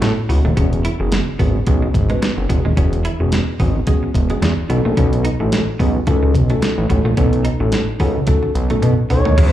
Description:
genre	early-eighties boogie funk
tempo	109 BPM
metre	4/4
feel	swing 56% on 16ths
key	unclear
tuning	A4 = 440 Hz
part	mellow tine electric piano	accompaniment	0.0-9.5 s	B3 to B4	-23 LUFS	left 3 dB	slapback echo
part	semi-hollow electric guitar	riff	0.0-9.5 s	G#3 to E4	-27 LUFS	right 6 dB	ensemble chorus, slapback echo
part	fat analog bass	bass	0.0-9.5 s	D#1 to B2	-16 LUFS	equal	none
part	crisp 8-bit digital drum machine	drums	0.0-9.5 s	crash cymbal, hi-hat, kick drum, snare drum, toms	-19 LUFS	equal	slapback echo
part	expressive synth lead	melody	9.1-9.5 s	C#5	-19 LUFS	right 1 dB	chorus, slapback echo
part	warm symphonic string section	sustained chords	9.4-9.5 s	C#3 to E4	-25 LUFS	left 3 dB	none
room	digital ambience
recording	live gig heard through the venue's PA, club reverb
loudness	-14 LUFS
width	side -12 dB against mid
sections	0.0-9.4 A section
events	drum fill 8.3-9.4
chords	0.0 A6; 0.6 E69; 4.7 B7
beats	0.02 | 0.57 1.12 1.67 2.22 | 2.77 3.32 3.87 4.42 | 4.97 5.52 6.07 6.62 | 7.17 7.72 8.28 8.82 | 9.38

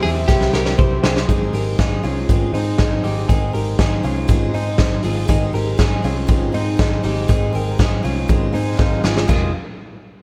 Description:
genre	jangly indie pop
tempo	120 BPM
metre	4/4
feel	straight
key	unclear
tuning	A4 = 437 Hz
part	electric guitar at the edge of break-up	melody	0.0-0.7 s	G4 to Ab4	-26 LUFS	equal	tape echo
part	overdriven combo organ	accompaniment	0.0-9.5 s	C4 to Ab5	-31 LUFS	equal	none
part	picked steel-string acoustic guitar	accompaniment	0.0-9.5 s	F2 to Ab4	-30 LUFS	equal	none
part	ensemble organ-string	sustained chords	0.0-1.2 s	none	barely audible	none	none
part	twelve-string electric guitar	arpeggios	0.0-9.5 s	C4 to C5	-26 LUFS	equal	tape echo
part	vintage muted picked electric bass	bass	0.0-9.5 s	F1 to Ab2	-24 LUFS	equal	none
part	raw garage drum kit	drums	0.0-9.4 s	crash cymbal, hi-hat, kick drum, snare drum	-21 LUFS	equal	none
room	light reverb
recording	none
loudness	-18 LUFS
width	mono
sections	0.0-1.3 A section; 1.3-9.3 B section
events	drum fill 0.3-1.3, 8.8-9.3; transistor combo organ fill 8.3-9.3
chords	0.0 C; 1.3 Ab; 9.3 Fm7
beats	0.29 0.79 | 1.29 1.79 2.29 2.79 | 3.29 3.79 4.29 4.79 | 5.29 5.79 6.29 6.79 | 7.29 7.79 8.29 8.79 | 9.29

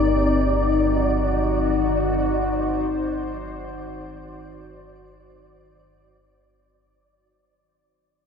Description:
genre	dark ambient drone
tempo	free time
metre	none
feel	none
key	unclear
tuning	A4 = 440 Hz
part	deep dark ambient pad	sustained chords	0.0-6.8 s	C4 to C5	-23 LUFS	left 2 dB	chorus, built-in reverb
part	deep rumbling drone	drone	0.0-6.9 s	G1 to G2	-27 LUFS	equal	built-in reverb
part	flickering grainy texture	texture	0.0-6.8 s	D5	-28 LUFS	left 1 dB	built-in reverb
room	wet huge ambient reverb, RT60 7.3 s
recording	none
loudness	-19 LUFS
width	side -6 dB against mid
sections	0.0-6.8 A section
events	fade-out 0.0-6.8; filter sweep on synth drone 0.0-6.8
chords	0.0 Ebm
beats	free time

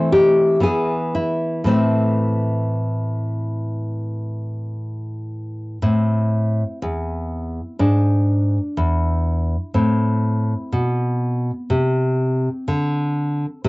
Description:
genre	classical, baroque-style dance for nylon-string guitar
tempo	57-62 BPM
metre	4/4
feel	rubato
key	A minor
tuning	A4 = 438 Hz
part	nylon-string guitar	solo	0.0-13.7 s	E2 to C5	-18 LUFS	equal	cassette tape
room	wet booth ambience, RT60 0.2 s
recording	home recording on cassette, nothing above 7.9 kHz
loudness	-18 LUFS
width	side -23 dB against mid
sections	0.0-5.8 A section; 5.8-13.7 B section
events	none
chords	0.0 Am/E; 0.6 E; 1.7 Am; 7.8 E7/G#; 9.7 Am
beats	0.64 | 1.66 2.71 3.75 4.79 | 5.82 6.82 7.79 8.76 | 9.74 10.73 11.70 12.67 | 13.64

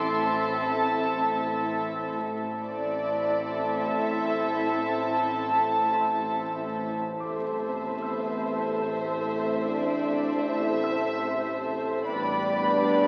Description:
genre	cinematic, suspense film score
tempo	75 BPM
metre	3/4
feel	straight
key	A minor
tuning	A4 = 439 Hz
part	warm symphonic violin section	melody	0.0-13.1 s	B4 to C6	-32 LUFS	equal	none
part	warm symphonic violin section	second line	0.0-13.1 s	A4 to B5	-32 LUFS	equal	none
part	dark symphonic viola section	accompaniment	0.0-13.1 s	C4 to B4	-36 LUFS	equal	none
part	glass harmonica	sustained chords	0.0-13.1 s	C4 to A5	-37 LUFS	equal	none
part	rich chamber cello section	bass	0.0-13.1 s	A2	-43 LUFS	equal	none
part	warm chamber double bass section	bass	0.0-13.1 s	A1	-46 LUFS	equal	none
part	bowed-like drone	drone	0.0-13.1 s	A1	-44 LUFS	equal	none
part	bright grand piano	texture	0.0-13.1 s	A4 to E6	-46 LUFS	equal	none
part	warm symphonic violin section	texture	0.0-1.8 s	E6 to A6	-46 LUFS	equal	none
part	warm trombone section	sustained chords	7.2-13.1 s	G2 to B3	-37 LUFS	equal	none
part	sub drop	sound effects	7.2-9.7 s	none	-59 LUFS	equal	none
part	warm French horn section	sustained chords	7.6-13.1 s	B3 to E4	-36 LUFS	equal	none
room	wet concert hall reverb, RT60 2.4 s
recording	very old 78 rpm record, vinyl crackle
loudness	-27 LUFS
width	mono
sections	0.0-7.2 A section; 7.2-13.1 B section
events	impact 7.2-9.7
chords	0.0 Am; 12.1 G/A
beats	0.62 1.42 | 2.22 3.02 3.84 | 4.69 5.54 6.38 | 7.21 8.03 8.85 | 9.66 10.46 11.26 | 12.05 12.85

